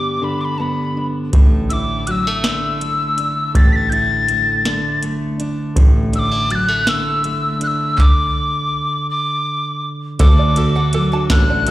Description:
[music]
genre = indie folk with a building arrangement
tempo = 54 BPM (dotted quarters)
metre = 6/8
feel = straight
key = unclear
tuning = A4 = 440 Hz
[part]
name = breathy mellow tin whistle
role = melody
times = 0.0-11.7 s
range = A5 to B6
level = -19 LUFS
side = left 2 dB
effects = slapback echo
[part]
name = fingerpicked steel-string acoustic guitar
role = accompaniment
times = 0.0-11.7 s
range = D2 to G4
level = -22 LUFS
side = equal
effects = none
[part]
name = picked electric bass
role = bass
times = 1.3-11.7 s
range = A1 to D2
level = -21 LUFS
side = right 1 dB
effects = none
[part]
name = soft vintage rhythm box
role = drums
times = 1.3-11.7 s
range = handclaps, hi-hat, kick drum, snare drum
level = -13 LUFS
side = equal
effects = none
[part]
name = picked steel-string acoustic guitar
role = accompaniment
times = 10.2-11.7 s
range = D3 to A4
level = -27 LUFS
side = left 2 dB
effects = slapback echo
[part]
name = open-back banjo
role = arpeggios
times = 10.2-11.7 s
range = A4 to A5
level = -25 LUFS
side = right 6 dB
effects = slapback echo
[sound]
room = small room ambience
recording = live gig heard through the venue's PA, recital hall reverb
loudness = -14 LUFS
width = side -16 dB against mid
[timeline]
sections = 0.0-10.2 A section; 10.2-11.7 B section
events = stop 8.0-10.2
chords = 0.0 G; 1.3 Asus4; 10.2 D

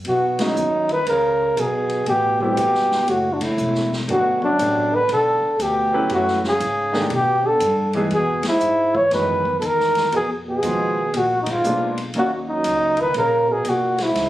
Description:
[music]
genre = jazz, small-group swing and bop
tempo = 119 BPM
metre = 4/4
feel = swing 66% on 8ths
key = unclear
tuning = A4 = 440 Hz
[part]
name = upright bass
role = bass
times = 0.0-14.3 s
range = E1 to B2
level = -30 LUFS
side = left 1 dB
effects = none
[part]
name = swinging big-band drum kit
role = drums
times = 0.0-14.3 s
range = hi-hat, kick drum, ride cymbal, snare drum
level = -32 LUFS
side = left 1 dB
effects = none
[part]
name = breathy flugelhorn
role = melody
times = 0.1-14.3 s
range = D4 to C#5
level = -18 LUFS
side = equal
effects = none
[part]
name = breathy trombone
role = second line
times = 0.1-14.3 s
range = F#2 to E3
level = -27 LUFS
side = right 2 dB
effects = none
[part]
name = warm grand piano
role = accompaniment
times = 0.4-12.9 s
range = D#3 to B4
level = -25 LUFS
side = right 1 dB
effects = none
[sound]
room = light reverb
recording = recorded on a phone in the room, club reverb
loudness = -17 LUFS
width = side -14 dB against mid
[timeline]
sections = 0.1-14.3 A section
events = band accent 0.3, 3.3, 8.4, 11.4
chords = 0.1 B69; 2.1 Am9; 3.1 Esus4; 4.1 Gmaj7; 6.1 F#m9; 7.1 B7alt; 8.1 Emaj7; 10.1 Fm7b5; 11.1 A#7b9; 12.1 D#m7

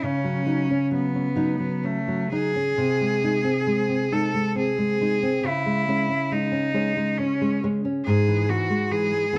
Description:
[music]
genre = romantic duo for cello and classical guitar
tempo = 67 BPM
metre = 3/4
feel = uneven beats, rubato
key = C# minor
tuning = A4 = 440 Hz
[part]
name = rich cello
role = melody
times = 0.0-9.4 s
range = A3 to A4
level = -27 LUFS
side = equal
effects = none
[part]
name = nylon-string guitar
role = accompaniment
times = 0.0-9.4 s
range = G#2 to D#4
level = -26 LUFS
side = equal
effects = none
[sound]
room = light reverb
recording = close, detailed microphones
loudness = -24 LUFS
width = mono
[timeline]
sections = 0.0-9.4 A section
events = none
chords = 0.0 C#9sus4; 2.8 G#/B#; 5.5 C#m; 8.1 E/G#

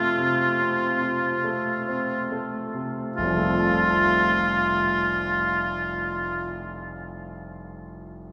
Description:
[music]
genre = classical, romantic duo for oboe and grand piano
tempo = 36 BPM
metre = 4/4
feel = rubato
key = F major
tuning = A4 = 440 Hz
[part]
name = clear oboe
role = melody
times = 0.0-6.6 s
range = F4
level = -26 LUFS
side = equal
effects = none
[part]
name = bright concert grand piano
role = accompaniment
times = 0.0-8.3 s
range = F1 to F4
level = -30 LUFS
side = equal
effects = none
[sound]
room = wet cathedral reverb, RT60 4.5 s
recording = none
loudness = -24 LUFS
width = mono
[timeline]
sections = 0.0-3.2 A section; 3.2-8.3 B section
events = slowing down 0.0-3.2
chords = 0.0 F

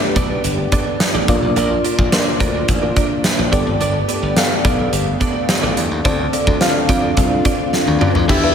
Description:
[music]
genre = 1980s-style pop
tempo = 107 BPM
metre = 4/4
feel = straight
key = unclear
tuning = A4 = 440 Hz
[part]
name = FM electric piano with soft pad layer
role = accompaniment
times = 0.0-8.5 s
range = G2 to F5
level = -19 LUFS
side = left 1 dB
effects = chorus, slapback echo
[part]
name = phased analog pad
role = sustained chords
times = 0.0-8.5 s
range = D3 to G4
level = -25 LUFS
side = equal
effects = phaser, chorus
[part]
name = direct-recorded clean electric guitar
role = riff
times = 0.0-8.5 s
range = B3 to E5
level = -24 LUFS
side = right 4 dB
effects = ensemble chorus, digital delay, slapback echo
[part]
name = glassy slap bass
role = bass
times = 0.2-8.5 s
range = G1 to F#2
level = -22 LUFS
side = equal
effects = none
[part]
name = huge arena drum kit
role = drums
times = 0.2-8.4 s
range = crash cymbal, hi-hat, kick drum, snare drum, toms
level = -18 LUFS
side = equal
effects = none
[part]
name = overdriven electric guitar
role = accompaniment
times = 8.3-8.5 s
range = E3 to E4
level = -20 LUFS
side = left 1 dB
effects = wide subtle chorus
[sound]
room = wet lush hall reverb, RT60 1.7 s, small room reverb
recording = big arena sound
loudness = -14 LUFS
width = side -7 dB against mid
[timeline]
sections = 0.0-8.3 A section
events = drum fill 7.7-8.3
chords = 0.0 Gadd9; 1.3 Bb; 3.5 Gadd9; 6.1 Dm7

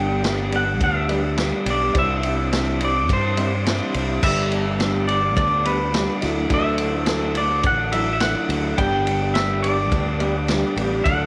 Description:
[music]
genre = folk rock and heartland rock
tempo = 105 BPM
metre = 4/4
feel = straight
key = unclear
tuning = A4 = 440 Hz
[part]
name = clean electric guitar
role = melody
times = 0.0-11.3 s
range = B4 to G5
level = -26 LUFS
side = equal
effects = spring reverb
[part]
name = picked twelve-string acoustic guitar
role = accompaniment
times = 0.0-11.3 s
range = G2 to G4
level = -33 LUFS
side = equal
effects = none
[part]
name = warm upright piano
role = accompaniment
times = 0.0-11.3 s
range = D4 to D5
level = -38 LUFS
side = equal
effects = none
[part]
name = tonewheel organ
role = sustained chords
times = 0.0-11.3 s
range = D4 to D5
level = -39 LUFS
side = equal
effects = none
[part]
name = electric guitar through a small old amp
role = riff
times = 0.0-11.3 s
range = G2 to G4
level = -28 LUFS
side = equal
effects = none
[part]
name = modern bright fingered electric bass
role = bass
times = 0.0-11.3 s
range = G1 to G2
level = -27 LUFS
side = equal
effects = none
[part]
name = vintage drum kit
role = drums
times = 0.2-11.2 s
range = crash cymbal, kick drum, ride cymbal, snare drum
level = -27 LUFS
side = equal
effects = none
[sound]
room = small room ambience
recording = none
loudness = -21 LUFS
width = mono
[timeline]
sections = 0.0-11.3 A section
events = none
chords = 0.0 G; 1.9 Cadd9; 4.2 G; 6.2 Dadd9; 8.8 G

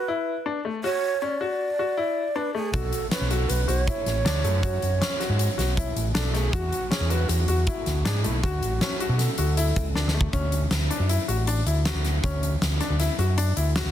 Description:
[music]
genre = progressive instrumental, band music in an uneven meter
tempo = 158 BPM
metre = 5/4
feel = straight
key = D lydian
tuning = A4 = 441 Hz
[part]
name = breathy hollow long shakuhachi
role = second line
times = 0.0-10.1 s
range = E4 to D5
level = -29 LUFS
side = right 4 dB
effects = none
[part]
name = bright baby grand piano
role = arpeggios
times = 0.1-13.9 s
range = A3 to F#4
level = -30 LUFS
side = left 6 dB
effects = none
[part]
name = overdriven fingered electric bass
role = bass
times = 2.7-13.9 s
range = A1 to B2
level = -24 LUFS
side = equal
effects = none
[part]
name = huge arena drum kit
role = drums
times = 2.7-13.8 s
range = hi-hat, kick drum, snare drum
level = -27 LUFS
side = equal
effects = none
[sound]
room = light reverb, studio reverb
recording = dense, heavily limited modern master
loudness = -22 LUFS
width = side -11 dB against mid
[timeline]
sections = 0.0-10.3 A section; 10.3-13.9 B section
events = drum fill 10.0-10.3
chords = 0.0 B7sus2; 6.5 E9; 8.4 Dmaj9; 10.3 Dmaj7; 12.2 Dmaj9

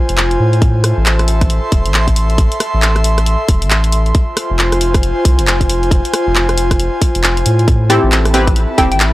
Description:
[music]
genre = UK garage, two-step garage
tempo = 136 BPM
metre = 4/4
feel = swing 61% on 16ths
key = A minor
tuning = A4 = 438 Hz
[part]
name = airy breathy pad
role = texture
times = 0.0-9.1 s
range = F4 to C6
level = -18 LUFS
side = equal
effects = chorus, sidechain pumping
[part]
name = soft dub sub bass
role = bass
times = 0.1-9.1 s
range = E1 to A2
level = -14 LUFS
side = equal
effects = none
[part]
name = garage drum kit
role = drums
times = 0.1-9.1 s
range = handclaps, hi-hat, rim click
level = -16 LUFS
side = equal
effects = none
[part]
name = electronic kick drum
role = drums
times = 0.6-8.9 s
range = none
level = -14 LUFS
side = equal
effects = none
[part]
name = ethereal airy pad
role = sustained chords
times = 7.9-9.1 s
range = C4 to B5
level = -25 LUFS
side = equal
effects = ensemble chorus, built-in reverb, sidechain pumping
[part]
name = punchy chord stab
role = stabs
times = 7.9-8.9 s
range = C4 to B4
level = -14 LUFS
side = equal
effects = chorus, tape echo
[part]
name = hollow square pluck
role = melody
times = 8.8-9.0 s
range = G5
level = -15 LUFS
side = equal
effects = chorus
[sound]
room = light reverb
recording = dry, gritty hardware recording, transformer saturation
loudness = -11 LUFS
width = side -17 dB against mid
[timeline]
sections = 0.0-9.1 A section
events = none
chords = 0.0 Fm; 0.6 Am; 4.1 Fm; 7.7 Am7

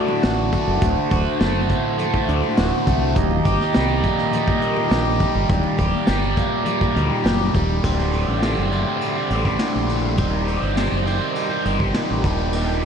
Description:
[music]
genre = psychedelic rock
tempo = 102 BPM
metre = 4/4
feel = straight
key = D phrygian dominant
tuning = A4 = 440 Hz
[part]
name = pedal harmonium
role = sustained chords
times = 0.0-12.8 s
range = Eb3 to C6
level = -25 LUFS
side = right 4 dB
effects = none
[part]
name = cranked stack guitar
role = riff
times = 0.0-12.8 s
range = D2 to C5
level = -22 LUFS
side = left 1 dB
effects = overdrive, phaser
[part]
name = congas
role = percussion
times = 0.1-7.8 s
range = none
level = -33 LUFS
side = left 4 dB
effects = none
[part]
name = growling fingered electric bass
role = bass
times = 0.2-12.8 s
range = D1 to D2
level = -22 LUFS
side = equal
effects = overdrive
[part]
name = vintage brush drum kit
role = drums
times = 0.2-12.7 s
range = hi-hat, kick drum, ride cymbal, snare drum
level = -24 LUFS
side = equal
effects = none
[sound]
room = moderate lush hall reverb, RT60 2.1 s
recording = dreamy mix soaked in reverb, nothing above 10.5 kHz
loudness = -18 LUFS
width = side -7 dB against mid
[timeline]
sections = 0.0-7.8 A section; 7.8-12.8 B section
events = drum fill 7.1-7.8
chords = 0.0 D; 3.2 Eb/D; 7.8 D7sus4; 10.2 Cmadd9/Eb; 12.2 Ebmaj7

